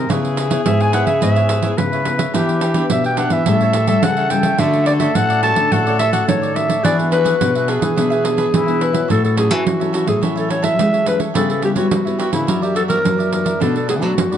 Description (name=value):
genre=samba and choro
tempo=106 BPM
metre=4/4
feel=straight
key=A major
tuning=A4 = 441 Hz
part: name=breathy silver concert flute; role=second line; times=0.0-9.1 s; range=E4 to B4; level=-23 LUFS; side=left 4 dB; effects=none
part: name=cavaquinho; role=accompaniment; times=0.0-14.4 s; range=D4 to E5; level=-26 LUFS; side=right 4 dB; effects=none
part: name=nylon-string guitar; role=accompaniment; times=0.0-14.4 s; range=F#2 to C#5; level=-24 LUFS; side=left 6 dB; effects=none
part: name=nylon-string guitar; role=bass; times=0.0-14.4 s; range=G#2 to G#3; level=-20 LUFS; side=equal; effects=none
part: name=pandeiro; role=percussion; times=0.1-14.4 s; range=none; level=-22 LUFS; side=right 4 dB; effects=none
part: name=growling clarinet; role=melody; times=0.7-14.4 s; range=E4 to A5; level=-18 LUFS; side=equal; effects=none
room=moderate large studio reverb, RT60 1.1 s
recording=dark, warm production, nothing above 10.8 kHz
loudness=-14 LUFS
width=side -9 dB against mid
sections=0.0-9.1 A section; 9.1-14.4 B section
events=none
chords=0.1 C#m7; 2.3 Em7; 3.5 A7; 4.6 Dmaj7; 6.8 E7; 9.1 A6; 11.4 C#m7b5; 12.5 F#aug7; 13.6 Bm7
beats=| 0.10 0.66 1.22 1.78 | 2.35 2.91 3.47 4.03 | 4.59 5.16 5.72 6.28 | 6.84 7.41 7.97 8.54 | 9.10 9.66 10.22 10.79 | 11.35 11.92 12.48 13.04 | 13.61 14.17